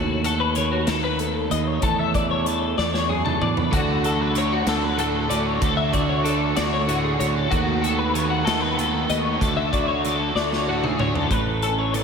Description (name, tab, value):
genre	math rock and midwest emo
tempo	63 BPM (dotted quarters)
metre	6/8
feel	straight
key	unclear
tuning	A4 = 440 Hz
part	twelve-string electric guitar	accompaniment	0.0-12.0 s	D2 to F#4	-26 LUFS	right 6 dB	lush chorus
part	twelve-string electric guitar	arpeggios	0.0-12.0 s	F#4 to E5	-24 LUFS	left 5 dB	ensemble chorus, analog delay
part	fuzz fingered electric bass	bass	0.0-12.0 s	A1 to E2	-27 LUFS	equal	overdrive
part	modern studio drum kit	drums	0.2-12.0 s	hi-hat, kick drum, snare drum, toms	-28 LUFS	equal	none
part	overdriven semi-hollow guitar	riff	3.7-11.3 s	D3 to F#4	-28 LUFS	right 2 dB	analog chorus
room	wet lush hall reverb, RT60 2.9 s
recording	dreamy mix soaked in reverb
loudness	-19 LUFS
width	side -6 dB against mid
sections	0.0-11.3 A section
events	drum fill 2.8-3.7, 10.4-11.3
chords	0.0 B7/D#; 1.8 E7sus4; 3.7 Dmaj7; 7.5 B7/D#; 9.4 Dmaj7; 11.3 Aadd9